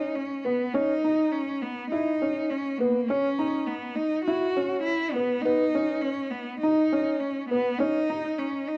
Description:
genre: piano and strings electronica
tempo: 102 BPM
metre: 4/4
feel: straight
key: C# dorian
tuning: A4 = 440 Hz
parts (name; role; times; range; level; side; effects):
- warm cello; melody; 0.0-8.8 s; A#3 to F#4; -29 LUFS; equal; cassette tape
- felt-muted upright piano; riff; 0.0-8.4 s; B3 to E4; -30 LUFS; equal; cassette tape, analog delay
room: wet studio reverb, RT60 0.5 s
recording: home recording on cassette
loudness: -27 LUFS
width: mono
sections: 0.0-8.8 A section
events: build-up 0.0-8.8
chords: 0.0 C#7sus2; 5.5 B; 7.8 Badd9 (rootless)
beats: 0.16 | 0.75 1.33 1.92 2.51 | 3.10 3.69 4.28 4.86 | 5.45 6.04 6.63 7.22 | 7.80 8.39

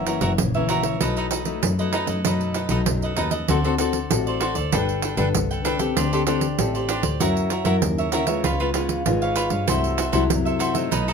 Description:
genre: samba and choro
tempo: 97 BPM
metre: 4/4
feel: straight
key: unclear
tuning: A4 = 440 Hz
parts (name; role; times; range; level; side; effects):
- cavaquinho; accompaniment; 0.0-11.1 s; D4 to G5; -26 LUFS; right 2 dB; none
- nylon-string guitar; accompaniment; 0.0-11.1 s; F#2 to A#4; -25 LUFS; left 5 dB; none
- clear double bass; bass; 0.0-11.1 s; F#1 to G2; -25 LUFS; equal; none
- pandeiro; percussion; 0.1-11.1 s; none; -26 LUFS; right 7 dB; none
room: moderate studio reverb, RT60 0.5 s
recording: none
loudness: -20 LUFS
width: side -6 dB against mid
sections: 0.0-11.1 A section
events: none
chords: 0.0 F#7; 1.0 B7; 3.5 D7; 4.7 Gadd9; 6.0 D7sus4; 7.2 F#7; 8.4 C#7; 9.7 F#m7b5/C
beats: 0.39 | 1.01 1.63 2.25 2.87 | 3.49 4.11 4.73 5.35 | 5.97 6.59 7.21 7.83 | 8.45 9.06 9.69 10.30 | 10.93

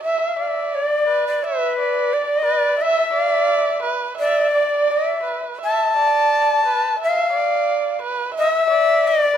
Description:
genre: japanese traditional, Japanese chamber music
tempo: 86 BPM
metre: 2/4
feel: uneven beats, rubato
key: D kumoi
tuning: A4 = 438 Hz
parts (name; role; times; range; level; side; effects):
- bright reedy shakuhachi; melody; 0.0-9.4 s; B4 to A5; -18 LUFS; left 2 dB; none
- dark erhu; second line; 0.0-9.4 s; B4 to E5; -22 LUFS; right 6 dB; none
room: moderate recital hall reverb, RT60 1.6 s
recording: none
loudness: -16 LUFS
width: side -9 dB against mid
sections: 0.0-9.4 A section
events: none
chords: none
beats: | 0.03 0.75 | 1.45 2.13 | 2.81 3.49 | 4.17 4.88 | 5.61 6.32 | 7.00 7.69 | 8.36 9.04

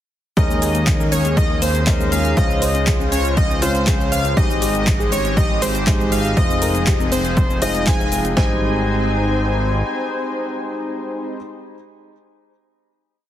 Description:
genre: progressive house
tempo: 120 BPM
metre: 4/4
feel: straight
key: Ab major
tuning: A4 = 436 Hz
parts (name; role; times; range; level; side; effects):
- plucky unison lead; melody; 0.4-11.4 s; C5 to Ab5; -24 LUFS; right 1 dB; ping-pong delay
- warm analog pad; sustained chords; 0.4-11.4 s; Db3 to C5; -26 LUFS; equal; chorus, sidechain pumping
- soft round pluck; arpeggios; 0.4-11.4 s; Ab3 to C5; -28 LUFS; left 2 dB; chorus, sidechain pumping, ping-pong delay
- felt-muted upright piano; stabs; 0.4-11.4 s; G3 to F5; -24 LUFS; left 1 dB; sidechain pumping, ping-pong delay
- fat analog bass; bass; 0.4-9.8 s; F1 to Eb2; -22 LUFS; equal; sidechain pumping
- big-room dance drum kit; drums; 0.4-8.5 s; kick drum, snare drum; -19 LUFS; equal; overdrive
- deep house drum kit; drums; 0.4-8.3 s; handclaps, hi-hat, shaker; -26 LUFS; equal; sidechain pumping on hats, sidechain pumping on perc
room: little or no reverb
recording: heavily compressed radio sound, multiband compression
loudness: -16 LUFS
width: side -11 dB against mid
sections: 0.4-8.4 drop; 8.4-12.4 final chord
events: drop 0.4-8.4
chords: 0.4 Eb7sus4; 2.4 Dbmaj7; 4.4 Abmaj7; 6.4 Fm7; 8.4 Abmaj7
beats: | 0.37 0.87 1.37 1.87 | 2.37 2.87 3.37 3.87 | 4.37 4.87 5.37 5.87 | 6.37 6.87 7.37 7.87 | 8.37 8.87 9.37 9.87 | 10.37 10.87

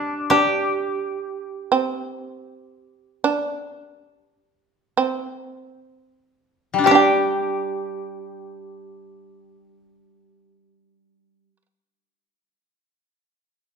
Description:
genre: japanese traditional, Japanese chamber music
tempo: 32-44 BPM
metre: 4/4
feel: rubato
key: unclear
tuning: A4 = 438 Hz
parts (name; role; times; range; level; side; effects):
- koto; melody; 0.0-11.6 s; D4 to G4; -23 LUFS; equal; none
- shamisen; second line; 0.0-11.7 s; G3 to G4; -20 LUFS; right 5 dB; none
- koto; accompaniment; 6.7-11.6 s; G3 to G4; -21 LUFS; left 6 dB; none
room: wet recital hall reverb, RT60 1.3 s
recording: none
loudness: -19 LUFS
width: side -5 dB against mid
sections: 0.0-6.9 A section; 6.9-13.8 B section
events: slowing down 0.0-6.9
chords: none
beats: | 0.32 1.72 3.23 4.97 | 6.86 8.65 10.41

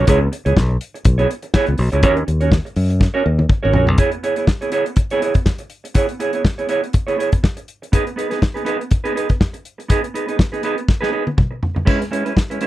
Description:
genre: disco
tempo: 122 BPM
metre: 4/4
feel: swing 56% on 16ths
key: C# dorian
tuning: A4 = 440 Hz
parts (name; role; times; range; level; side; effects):
- mellow electric guitar; accompaniment; 0.0-12.7 s; G#3 to C#5; -19 LUFS; right 3 dB; none
- fingered electric bass; bass; 0.0-4.0 s; G#1 to F#2; -16 LUFS; left 1 dB; none
- warm soul drum kit; drums; 0.1-12.7 s; hi-hat, kick drum, snare drum, splash cymbal, toms; -16 LUFS; left 1 dB; none
room: little or no reverb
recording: dry, close 1970s-style studio recording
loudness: -15 LUFS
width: side -15 dB against mid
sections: 0.0-4.0 A section; 4.0-12.7 B section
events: drum fill 3.0-4.0, 10.9-11.9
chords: 0.1 C#m7; 2.0 D#m7; 4.0 C#m7; 7.9 B6; 11.9 C#m7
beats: | 0.08 0.57 1.06 1.54 | 2.03 2.52 3.01 3.50 | 3.99 4.48 4.97 5.46 | 5.96 6.45 6.94 7.43 | 7.93 8.42 8.91 9.41 | 9.90 10.39 10.89 11.38 | 11.87 12.37

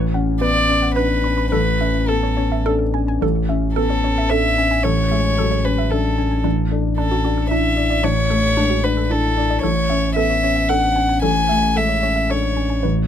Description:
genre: neoclassical piano and strings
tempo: 112 BPM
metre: 3/4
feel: rubato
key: A major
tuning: A4 = 442 Hz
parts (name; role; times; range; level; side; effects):
- dark grand piano; accompaniment; 0.0-13.1 s; A1 to E4; -21 LUFS; left 2 dB; none
- sub bass with octave; bass; 0.0-13.1 s; A1; -22 LUFS; equal; none
- woody wave-folded pluck; arpeggios; 0.1-12.9 s; D4 to B5; -26 LUFS; right 3 dB; chorus, slapback echo
- warm violin; melody; 0.4-12.8 s; A4 to G#5; -20 LUFS; left 1 dB; none
room: light reverb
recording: none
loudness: -16 LUFS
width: side -9 dB against mid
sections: 0.0-3.2 A section; 3.2-13.1 B section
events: none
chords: 0.0 Bmadd9/A; 1.5 A; 3.2 Amaj7; 6.5 D5/A; 9.6 Amaj7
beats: 0.42 0.97 | 1.53 2.10 2.66 | 3.22 3.77 4.31 | 4.85 5.38 5.92 | 6.45 6.98 7.51 | 8.04 8.57 9.11 | 9.64 10.17 10.70 | 11.23 11.76 12.30 | 12.84

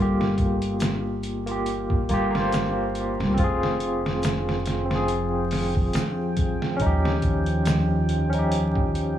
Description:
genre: trip hop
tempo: 70 BPM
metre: 4/4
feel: swing 56% on 16ths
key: F minor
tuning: A4 = 441 Hz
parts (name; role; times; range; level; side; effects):
- barky tine electric piano; accompaniment; 0.0-9.2 s; Bb3 to C5; -26 LUFS; equal; tremolo, tape echo
- upright bass; bass; 0.0-9.2 s; F1 to Eb2; -26 LUFS; equal; transformer saturation
- trip hop sampler-style drum kit; drums; 0.2-9.2 s; hi-hat, kick drum, snare drum; -26 LUFS; equal; none
- tube shaker; percussion; 0.8-7.9 s; none; -45 LUFS; left 4 dB; none
- deep dark ambient pad; sustained chords; 4.2-9.2 s; F3 to G5; -28 LUFS; equal; chorus, built-in reverb, vintage 12-bit sampler grit
room: little or no reverb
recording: dry, gritty hardware recording, vinyl crackle, small room ambience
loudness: -21 LUFS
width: side -11 dB against mid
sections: 0.0-9.2 A section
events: none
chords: 0.0 Gm7; 3.4 Fm; 6.8 Eb7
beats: 0.81 1.67 2.52 | 3.38 4.24 5.09 5.95 | 6.81 7.67 8.52

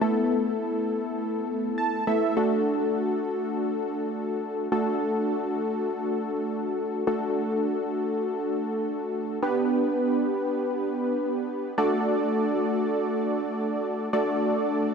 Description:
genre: pop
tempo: free time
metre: none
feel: none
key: D major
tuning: A4 = 439 Hz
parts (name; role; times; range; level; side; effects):
- warm analog keys; solo; 0.0-14.9 s; A3 to A5; -24 LUFS; equal; chorus, ping-pong delay
room: moderate lush hall reverb, RT60 2.4 s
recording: none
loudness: -24 LUFS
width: side -6 dB against mid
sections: 0.0-2.4 A section; 2.4-11.8 B section; 11.8-14.9 C section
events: synth keys fill 1.5-2.4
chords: 0.0 Asus2; 2.4 D; 9.4 G; 11.8 D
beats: free time

